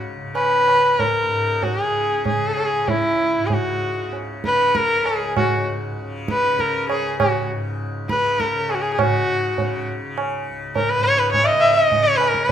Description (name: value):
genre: indian classical, Hindustani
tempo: 93-105 BPM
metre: 4/4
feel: straight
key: C# raga bhimpalasi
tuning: A4 = 441 Hz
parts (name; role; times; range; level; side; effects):
- tanpura; drone; 0.0-12.5 s; C#2 to C#3; -28 LUFS; left 1 dB; none
- rich sarangi; melody; 0.4-12.5 s; E4 to E5+21c; -18 LUFS; equal; none
- tabla; percussion; 0.4-12.5 s; none; -25 LUFS; right 4 dB; none
room: moderate recital hall reverb, RT60 1.5 s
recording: minimal, uncompressed stereo recording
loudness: -17 LUFS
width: side -9 dB against mid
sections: 0.0-9.0 A section; 9.0-12.5 B section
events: speeding up 0.0-12.5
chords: none